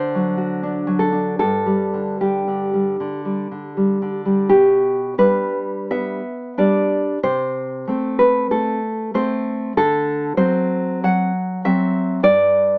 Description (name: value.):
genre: romantic piece for solo classical guitar.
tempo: 73-102 BPM.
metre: 4/4.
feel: rubato.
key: G major.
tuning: A4 = 441 Hz.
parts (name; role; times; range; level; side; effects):
nylon-string guitar; solo; 0.0-12.8 s; G2 to F#5; -16 LUFS; equal; none.
room: light reverb.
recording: small speaker sound.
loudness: -16 LUFS.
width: side -32 dB against mid.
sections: 0.0-4.5 A section; 4.5-12.8 B section.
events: none.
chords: 0.0 D7; 1.4 G5; 4.5 G/B; 7.2 Am/C; 9.8 D7; 12.2 G5.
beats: 0.63 | 1.39 2.20 2.99 3.76 | 4.49 5.16 5.89 6.55 | 7.20 7.85 8.49 9.12 | 9.75 10.37 11.04 11.64 | 12.24.